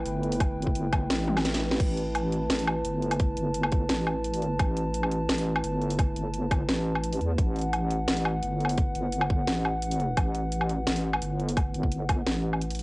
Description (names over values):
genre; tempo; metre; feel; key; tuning
half-time drum and bass; 172 BPM; 4/4; half-time; unclear; A4 = 440 Hz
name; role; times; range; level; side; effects
dark analog pad; sustained chords; 0.0-12.8 s; A3 to A5; -32 LUFS; equal; chorus, sidechain pumping, cassette tape
deep soft wobble bass; bass; 0.0-12.8 s; G1 to E2; -29 LUFS; equal; chorus, tube saturation
drum and bass drum kit; drums; 0.1-12.8 s; crash cymbal, hi-hat, snare drum, toms, woodblock; -30 LUFS; equal; overdrive, cassette tape
electronic kick drum; drums; 0.4-12.2 s; none; -26 LUFS; equal; overdrive, cassette tape
room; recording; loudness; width
moderate spring reverb, RT60 1.7 s, digital ambience; home recording on cassette, nothing above 10.8 kHz; -25 LUFS; side -23 dB against mid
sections
0.0-12.8 A section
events
drum fill 1.3-1.8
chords
0.0 A5